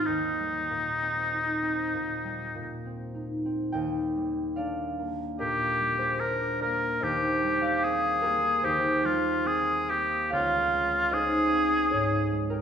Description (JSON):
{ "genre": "classical, impressionist duo for oboe and harp", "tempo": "63-76 BPM", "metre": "4/4", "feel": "rubato", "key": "Eb major", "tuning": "A4 = 440 Hz", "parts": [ { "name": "clear oboe", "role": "melody", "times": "0.0-12.5 s", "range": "Eb4 to Bb4", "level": "-26 LUFS", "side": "left 1 dB", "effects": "none" }, { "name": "concert harp", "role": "accompaniment", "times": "0.0-12.6 s", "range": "Db2 to G5", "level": "-29 LUFS", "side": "right 1 dB", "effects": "none" } ], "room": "wet recital hall reverb, RT60 1.4 s", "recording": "heard from further back in the room, nothing above 10.5 kHz", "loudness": "-25 LUFS", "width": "side -8 dB against mid", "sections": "0.0-3.8 A section; 3.8-12.6 B section", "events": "none", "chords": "0.1 Eb6; 3.8 Ebmaj9; 10.3 Dbmaj9" }